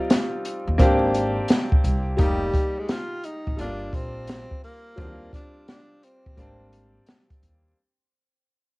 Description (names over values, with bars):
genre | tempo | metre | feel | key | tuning
hip hop, jazz-hop | 86 BPM | 4/4 | swing 66% on 16ths | unclear | A4 = 440 Hz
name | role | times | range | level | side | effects
bright upright piano | accompaniment | 0.0-7.8 s | Gb3 to D5 | -25 LUFS | equal | cassette tape, plate reverb
open jazz drum kit | drums | 0.1-7.6 s | hi-hat, kick drum, snare drum | -22 LUFS | equal | cassette tape
upright bass | bass | 0.7-7.7 s | F1 to Eb2 | -28 LUFS | equal | none
breathy tenor saxophone | melody | 2.2-7.1 s | G3 to F4 | -36 LUFS | equal | cassette tape, analog delay, plate reverb
room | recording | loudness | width
light reverb | home recording on cassette, vinyl crackle | -21 LUFS | side -24 dB against mid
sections
0.0-7.8 A section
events
fade-out 0.0-7.8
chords
0.0 Ebmaj13; 0.8 Abmaj9#11; 2.2 F9sus4; 3.6 Gm7; 5.0 Ebmaj13; 6.4 Abmaj9#11